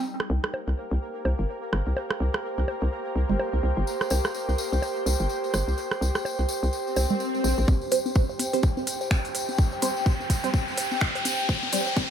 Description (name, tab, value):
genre	minimal techno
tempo	126 BPM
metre	4/4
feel	swing 58% on 16ths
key	unclear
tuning	A4 = 440 Hz
part	airy breathy pad	texture	0.0-12.1 s	G4 to G5	-31 LUFS	equal	chorus, sidechain pumping
part	pulsing gated texture	texture	0.0-7.7 s	Bb3 to Bb4	-38 LUFS	left 1 dB	chorus, built-in reverb, sidechain pumping
part	electronic rim click, bongos and congas	percussion	0.2-7.2 s	none	-30 LUFS	right 3 dB	digital delay
part	hollow knocking FM bass	bass	0.3-7.6 s	G1 to C2	-25 LUFS	equal	sidechain pumping
part	tambourine	percussion	3.9-12.1 s	none	-35 LUFS	left 4 dB	none
part	swell and riser	sound effects	6.9-12.1 s	none	-31 LUFS	left 1 dB	none
part	hollow square pluck	riff	7.7-12.1 s	C4 to C5	-34 LUFS	equal	chorus, cassette tape, sidechain pumping, digital delay
part	electronic kick drum	drums	7.7-12.1 s	none	-24 LUFS	equal	none
part	filtered dub chord stab	stabs	7.9-11.8 s	G3 to C5	-28 LUFS	right 3 dB	phaser, analog chorus, digital delay
part	garage drum kit	drums	7.9-11.8 s	finger snaps, hi-hat	-29 LUFS	right 1 dB	low-pass filter on hats, low-pass filter on snare, low-pass filter on room
room	moderate studio reverb, RT60 0.6 s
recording	high-pass filter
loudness	-23 LUFS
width	side -8 dB against mid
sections	0.1-7.7 A section; 7.7-12.1 B section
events	swell 6.9-7.7; build-up 7.7-12.1; riser 7.7-12.1; filter sweep 7.7-12.1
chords	0.1 C5